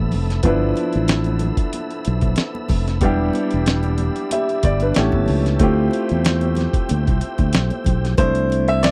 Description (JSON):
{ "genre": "R&B, neo-soul", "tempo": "93 BPM", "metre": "4/4", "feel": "swing 54% on 16ths", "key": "unclear", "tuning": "A4 = 440 Hz", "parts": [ { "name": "warm grand piano", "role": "accompaniment", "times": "0.0-8.9 s", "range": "F3 to E5", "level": "-24 LUFS", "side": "equal", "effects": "none" }, { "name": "tonewheel organ", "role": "sustained chords", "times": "0.0-8.2 s", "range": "G4 to E6", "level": "-35 LUFS", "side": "equal", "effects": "chorus vibrato, stopped rotary speaker" }, { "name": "fingered electric bass", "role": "bass", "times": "0.0-8.9 s", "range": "E1 to E2", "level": "-22 LUFS", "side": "equal", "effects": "none" }, { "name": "dusty soul sampler-style drum kit", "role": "drums", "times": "0.1-8.9 s", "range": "hi-hat, kick drum, snare drum", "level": "-23 LUFS", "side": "equal", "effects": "none" }, { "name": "congas", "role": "percussion", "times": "0.1-8.9 s", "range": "none", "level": "-35 LUFS", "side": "equal", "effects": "none" } ], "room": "little or no reverb", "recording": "dry, close 1970s-style studio recording", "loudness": "-19 LUFS", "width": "mono", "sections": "0.0-8.2 A section", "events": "none", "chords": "0.0 G13 (rootless); 3.0 Em7; 5.0 A7; 5.6 Dm11; 8.2 C69", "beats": "| 0.44 1.08 1.73 2.37 | 3.02 3.66 4.31 4.95 | 5.60 6.24 6.89 7.54 | 8.18 8.82" }